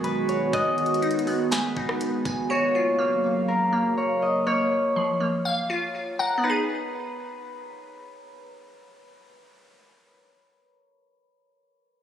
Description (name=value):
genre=hip hop, atmospheric cloud-rap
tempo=122 BPM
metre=4/4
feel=half-time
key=B lydian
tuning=A4 = 439 Hz
part: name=concert harp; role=melody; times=0.0-8.5 s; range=G#4 to D#5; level=-26 LUFS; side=left 1 dB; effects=ping-pong delay
part: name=warbly tape-like pad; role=sustained chords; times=0.0-4.4 s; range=C#3 to E#5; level=-27 LUFS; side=right 3 dB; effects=chorus, built-in reverb, sidechain pumping
part: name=glassy wavetable pluck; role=arpeggios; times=0.0-10.3 s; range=E#3 to G#5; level=-28 LUFS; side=equal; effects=chorus, ping-pong delay
part: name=soft 808-style bass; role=bass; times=0.0-0.5 s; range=B1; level=-36 LUFS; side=left 1 dB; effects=none
part: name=trap drum kit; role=drums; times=0.0-2.4 s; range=hi-hat, kick drum, rim click, snare drum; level=-30 LUFS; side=equal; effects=none
room=light reverb, digital ambience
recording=recorded on a phone in the room, studio reverb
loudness=-22 LUFS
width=side -9 dB against mid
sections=0.0-6.4 A section; 6.4-10.4 B section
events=none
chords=0.0 B6; 2.5 F#maj7; 6.4 B6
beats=0.04 | 0.53 1.03 1.52 2.01 | 2.50 2.99 3.48 3.98 | 4.47 4.96 5.45 5.94 | 6.44 6.93 7.42 7.91 | 8.40 8.89 9.39 9.88